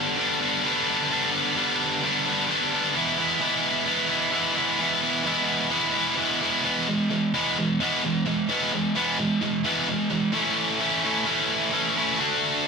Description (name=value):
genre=rock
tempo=130 BPM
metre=4/4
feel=straight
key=unclear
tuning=A4 = 440 Hz
part: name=high-gain distorted guitar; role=solo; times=0.0-12.7 s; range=G2 to F#4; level=-22 LUFS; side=equal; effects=distortion
room=moderate stone room reverb, RT60 1.1 s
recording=band playing live in one room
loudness=-22 LUFS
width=side -5 dB against mid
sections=0.0-6.6 A section; 6.6-10.3 B section; 10.3-12.7 C section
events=none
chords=0.0 G; 3.0 E; 10.3 A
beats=0.18 0.65 | 1.11 1.57 2.03 2.49 | 2.95 3.42 3.88 4.34 | 4.80 5.26 5.72 6.18 | 6.64 7.11 7.57 8.03 | 8.49 8.95 9.42 9.88 | 10.34 10.80 11.27 11.73 | 12.19 12.65